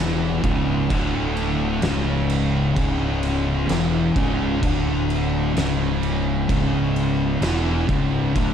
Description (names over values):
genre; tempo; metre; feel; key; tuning
stoner and doom metal; 64 BPM; 4/4; straight; C# minor; A4 = 440 Hz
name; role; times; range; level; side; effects
thick fuzz guitar; riff; 0.0-8.5 s; C#2 to E3; -24 LUFS; left 7 dB; distortion
thick fuzz guitar; riff; 0.0-8.5 s; C#2 to E3; -27 LUFS; right 9 dB; distortion
thick fuzz guitar; riff; 0.0-8.5 s; C#2 to E3; -28 LUFS; right 1 dB; distortion
fuzz fingered electric bass; bass; 0.0-8.5 s; C#1 to E1; -25 LUFS; right 1 dB; overdrive
oversized low-tuned drum kit; drums; 0.4-8.5 s; crash cymbal, kick drum, snare drum; -26 LUFS; right 1 dB; none
room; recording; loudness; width
studio reverb; dark, warm production; -19 LUFS; side -8 dB against mid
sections
0.0-8.5 A section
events
none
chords
0.0 C#m